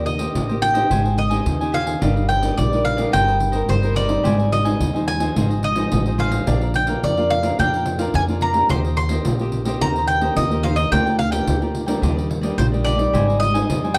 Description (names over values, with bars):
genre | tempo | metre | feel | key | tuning
samba and choro | 108 BPM | 4/4 | straight | Eb major | A4 = 440 Hz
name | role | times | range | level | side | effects
mandolin | melody | 0.0-14.0 s | C5 to C6 | -24 LUFS | equal | plate reverb
cavaquinho | accompaniment | 0.0-14.0 s | D4 to Ab5 | -34 LUFS | equal | none
nylon-string guitar | accompaniment | 0.0-14.0 s | F2 to Bb4 | -27 LUFS | equal | none
upright bass | bass | 0.0-14.0 s | G1 to F2 | -25 LUFS | equal | none
pandeiro | percussion | 0.1-14.0 s | none | -27 LUFS | equal | none
room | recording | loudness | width
light reverb | dark, warm production | -19 LUFS | mono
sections
0.0-14.0 A section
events
none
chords
0.0 Eb6; 0.9 Abmaj7; 2.0 Ebmaj7/G; 3.1 Cm7/G; 4.2 Abmaj7; 5.4 Fm7/Ab; 6.5 Bb; 8.7 Eb6; 9.8 Cm7/Eb; 10.9 Gm7/D; 12.0 Ebmaj7; 13.1 Abmaj7